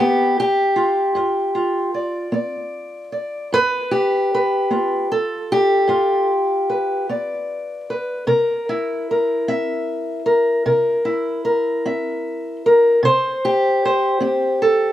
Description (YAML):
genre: acoustic country blues, solo or duo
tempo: 50 BPM (dotted quarters)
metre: 12/8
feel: straight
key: G mixolydian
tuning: A4 = 441 Hz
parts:
  - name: fingerpicked steel-string acoustic guitar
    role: solo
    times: 0.0-14.9 s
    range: G2 to E5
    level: -17 LUFS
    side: equal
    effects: none
room: little or no reverb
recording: recorded outdoors, with no room sound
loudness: -17 LUFS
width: side -12 dB against mid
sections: 0.0-14.9 A section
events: none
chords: 0.0 G7; 8.3 C7